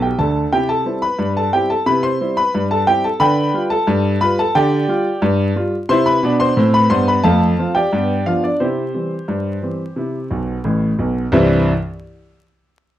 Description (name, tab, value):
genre	ragtime piano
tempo	89 BPM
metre	2/4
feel	straight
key	C major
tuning	A4 = 441 Hz
part	warm grand piano	solo	0.0-11.7 s	A1 to C6	-14 LUFS	equal	none
room	light reverb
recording	dark, warm production, vinyl crackle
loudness	-14 LUFS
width	side -12 dB against mid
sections	0.0-11.3 A section; 11.3-12.7 B section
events	grand piano fill 0.0-0.5, 10.3-11.3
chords	0.0 G; 0.5 C; 3.2 G7; 5.9 C; 7.2 F; 7.9 G7; 8.6 C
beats	| 0.52 1.19 | 1.87 2.54 | 3.21 3.88 | 4.56 5.23 | 5.90 6.57 | 7.24 7.92 | 8.60 9.28 | 9.96 10.64 | 11.32